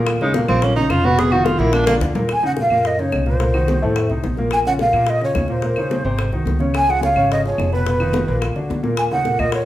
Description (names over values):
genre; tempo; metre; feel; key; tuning
Afro-Cuban jazz; 216 BPM; 4/4; straight; Eb minor; A4 = 440 Hz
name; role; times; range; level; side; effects
breathy tenor saxophone; second line; 0.0-1.9 s; Ab3 to Ab4; -19 LUFS; right 2 dB; none
warm grand piano; accompaniment; 0.0-9.6 s; A2 to Db5; -20 LUFS; equal; none
upright bass; bass; 0.0-9.7 s; F1 to Bb2; -23 LUFS; equal; none
bongos; percussion; 0.1-9.7 s; none; -29 LUFS; left 5 dB; none
claves; percussion; 0.1-9.5 s; none; -33 LUFS; left 1 dB; none
congas; percussion; 0.1-9.7 s; none; -28 LUFS; equal; none
breathy mellow jazz flute; melody; 2.3-9.7 s; Cb5 to Ab5; -19 LUFS; right 1 dB; none
room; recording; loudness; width
wet large studio reverb, RT60 1.1 s; band playing live in one room; -16 LUFS; side -14 dB against mid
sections
0.0-2.3 A section; 2.3-9.7 B section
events
tenor saxophone solo 0.0-2.3; drum fill 1.7-2.3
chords
0.1 Eb5; 1.2 Abm13/F; 1.7 Bb; 2.3 Ebm7; 3.4 Cm7b5; 4.0 F7; 4.5 Bbm; 5.6 Eb5; 6.2 Ab7; 6.7 Db; 7.9 Bmaj7#11/E#; 8.4 Bbaug; 9.0 Ebm7